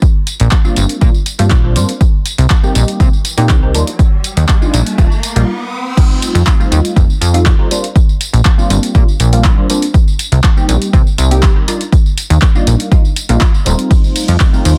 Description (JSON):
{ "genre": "filtered disco house", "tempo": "121 BPM", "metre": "4/4", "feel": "straight", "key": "unclear", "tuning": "A4 = 440 Hz", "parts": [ { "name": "electronic kick drum", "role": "drums", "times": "0.0-14.5 s", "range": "none", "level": "-12 LUFS", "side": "equal", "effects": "overdrive" }, { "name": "punchy analog drum machine", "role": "drums", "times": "0.0-14.8 s", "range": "crash cymbal, handclaps, hi-hat, ride cymbal, tambourine", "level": "-22 LUFS", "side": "equal", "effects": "overdrive, sidechain pumping on hats, sidechain pumping on perc, sidechain pumping on cymbals" }, { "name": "plucky analog bass", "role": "bass", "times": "0.4-14.7 s", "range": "Eb1 to C3", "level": "-13 LUFS", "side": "equal", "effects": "tube saturation, sidechain pumping, low-pass filter" }, { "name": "funky polysynth comp", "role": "accompaniment", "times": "0.6-14.8 s", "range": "G3 to G4", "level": "-20 LUFS", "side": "equal", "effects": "chorus, phaser, sidechain pumping, low-pass filter" }, { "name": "riser", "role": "sound effects", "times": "3.4-6.0 s", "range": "none", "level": "-28 LUFS", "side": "equal", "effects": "none" } ], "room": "little or no reverb", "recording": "dense, heavily limited modern master", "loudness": "-12 LUFS", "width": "mono", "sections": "0.0-6.0 A section; 6.0-14.8 B section", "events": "riser 3.4-6.0; stop 5.5-6.0; drop 6.0-14.8", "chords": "0.0 Bb69; 2.0 Cm7; 3.7 Ebmaj9; 6.0 F9; 7.7 Bb69; 9.9 Cm7; 11.7 Ebmaj9; 13.9 F9" }